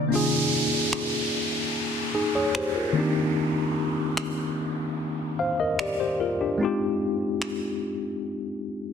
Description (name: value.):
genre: contemporary R&B.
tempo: 74 BPM.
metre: 4/4.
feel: straight.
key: unclear.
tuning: A4 = 440 Hz.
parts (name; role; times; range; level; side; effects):
mellow tine electric piano; accompaniment; 0.0-8.9 s; Eb3 to F5; -25 LUFS; left 2 dB; medium stereo tremolo.
downlifter; sound effects; 0.1-6.6 s; none; -30 LUFS; right 1 dB; none.
electronic finger snaps; drums; 0.9-7.6 s; none; -32 LUFS; left 1 dB; soft clipping on snare.
room: light reverb, digital ambience.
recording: dense, heavily limited modern master.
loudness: -24 LUFS.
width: side -7 dB against mid.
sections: 0.1-8.9 A section.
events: none.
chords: 0.1 Db6; 3.0 Cm9/Eb; 6.6 Fm9.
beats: | 0.12 0.93 1.74 2.55 | 3.36 4.17 4.98 5.79 | 6.60 7.41 8.22.